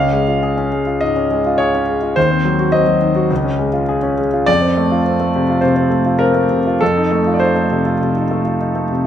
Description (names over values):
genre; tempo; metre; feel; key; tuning
classical, romantic character piece for solo piano; 97-108 BPM; 4/4; rubato; unclear; A4 = 440 Hz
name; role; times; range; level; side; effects
clear concert grand piano; solo; 0.0-9.1 s; Db2 to F5; -13 LUFS; equal; none
room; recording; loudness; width
moderate recital hall reverb, RT60 1.5 s; minimal, uncompressed stereo recording; -13 LUFS; side -10 dB against mid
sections
0.0-9.1 A section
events
none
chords
0.0 Db; 2.2 Cdim/Eb; 3.3 Db; 4.5 F; 6.8 F7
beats
0.43 1.02 1.59 | 2.16 2.73 3.30 3.89 | 4.47 5.05 5.62 6.20 | 6.81 7.41 8.00 8.60